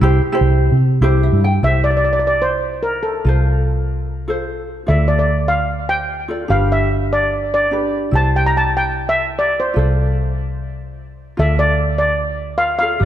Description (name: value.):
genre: calypso.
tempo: 148 BPM.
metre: 4/4.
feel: swing 53% on 16ths.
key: unclear.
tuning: A4 = 440 Hz.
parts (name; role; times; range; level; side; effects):
ukulele; accompaniment; 0.0-13.1 s; D4 to G5; -22 LUFS; equal; none.
vintage muted fingered electric bass; bass; 0.0-13.1 s; G1 to C3; -17 LUFS; equal; none.
steel pan; melody; 1.6-13.1 s; A4 to Bb5; -18 LUFS; equal; tape echo.
room: moderate concert hall reverb, RT60 2.0 s.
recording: none.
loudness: -14 LUFS.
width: side -11 dB against mid.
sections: 0.0-1.6 A section; 1.6-13.1 B section.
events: ukulele fill 0.8-1.6.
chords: 0.0 C; 3.3 F/C; 4.9 Dm; 6.5 G; 8.1 C; 9.8 F/C; 11.4 Dm.